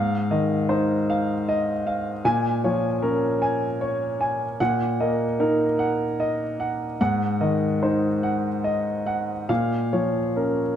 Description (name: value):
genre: neoclassical minimalist piano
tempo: 46-53 BPM (dotted quarters)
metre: 6/8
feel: rubato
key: Bb minor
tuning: A4 = 440 Hz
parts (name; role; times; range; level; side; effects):
- warm grand piano; solo; 0.0-10.8 s; Ab2 to Ab5; -21 LUFS; equal; none
room: moderate concert hall reverb, RT60 2.1 s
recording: dark, warm production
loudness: -21 LUFS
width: side -9 dB against mid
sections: 0.0-10.8 A section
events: none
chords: 0.0 Fm7/Ab; 2.3 Bbm7; 4.6 Ebm/Bb; 7.0 Ab7; 9.5 Bbm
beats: 1.09 | 2.25 3.41 | 4.59 5.79 | 6.99 8.22 | 9.49